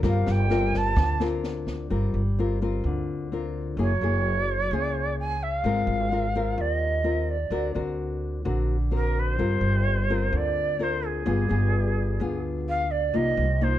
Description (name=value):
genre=bossa nova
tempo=128 BPM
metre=4/4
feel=straight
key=G minor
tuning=A4 = 439 Hz
part: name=nylon-string guitar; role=accompaniment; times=0.0-13.8 s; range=C3 to Bb4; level=-28 LUFS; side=left 4 dB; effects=none
part: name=upright bass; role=bass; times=0.0-13.8 s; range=F#1 to Eb2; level=-26 LUFS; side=right 1 dB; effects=none
part: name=open jazz drum kit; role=drums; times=0.0-1.7 s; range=kick drum, rim click, snare drum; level=-31 LUFS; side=right 1 dB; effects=none
part: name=shakuhachi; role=melody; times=0.1-13.8 s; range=Ab4 to A5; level=-28 LUFS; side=right 3 dB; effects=plate reverb
room=light reverb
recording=dark, warm production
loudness=-23 LUFS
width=side -12 dB against mid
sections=0.0-1.9 A section; 1.9-13.8 B section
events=shakuhachi solo 0.0-1.9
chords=0.0 Gm11; 3.8 F#9; 5.6 Ab69; 7.5 Daug7; 9.4 Gm7; 11.3 G7b9; 13.1 Cm11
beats=| 0.03 0.50 0.96 1.43 | 1.90 2.37 2.84 3.30 | 3.77 4.24 4.71 5.18 | 5.64 6.11 6.58 7.05 | 7.52 7.99 8.46 8.93 | 9.39 9.86 10.33 10.80 | 11.27 11.74 12.21 12.67 | 13.14 13.61